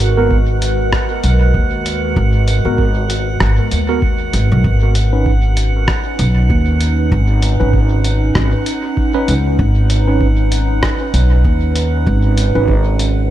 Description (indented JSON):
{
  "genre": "ambient dub",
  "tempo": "97 BPM",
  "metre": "4/4",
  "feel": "swing 57% on 16ths",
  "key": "unclear",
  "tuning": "A4 = 440 Hz",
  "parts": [
    { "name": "warbly tape-like pad", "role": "sustained chords", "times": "0.0-13.3 s", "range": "G#3 to B4", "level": "-21 LUFS", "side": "right 2 dB", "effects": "chorus, built-in reverb, phaser" },
    { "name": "upright bass", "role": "bass", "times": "0.0-13.3 s", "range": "G#1 to D#2", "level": "-14 LUFS", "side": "equal", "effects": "none" },
    { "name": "lo-fi sampler-style drum kit", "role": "drums", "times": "0.0-13.1 s", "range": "hi-hat, rim click", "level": "-22 LUFS", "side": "equal", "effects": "dub echo" },
    { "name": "drifting glass-harmonics texture", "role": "texture", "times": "0.0-13.3 s", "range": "F#5", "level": "-26 LUFS", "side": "right 4 dB", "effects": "chorus, built-in reverb" },
    { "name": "bright tine electric piano", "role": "stabs", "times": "0.2-12.7 s", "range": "B3 to B4", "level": "-23 LUFS", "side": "right 2 dB", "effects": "medium stereo tremolo, dub echo" },
    { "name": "electronic kick drum", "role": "drums", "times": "0.3-12.8 s", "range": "none", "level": "-19 LUFS", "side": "equal", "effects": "overdrive" }
  ],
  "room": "little or no reverb",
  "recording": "none",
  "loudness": "-12 LUFS",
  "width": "side -13 dB against mid",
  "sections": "0.0-13.3 A section",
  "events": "none",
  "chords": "0.0 G#m9; 4.6 Badd9/G#"
}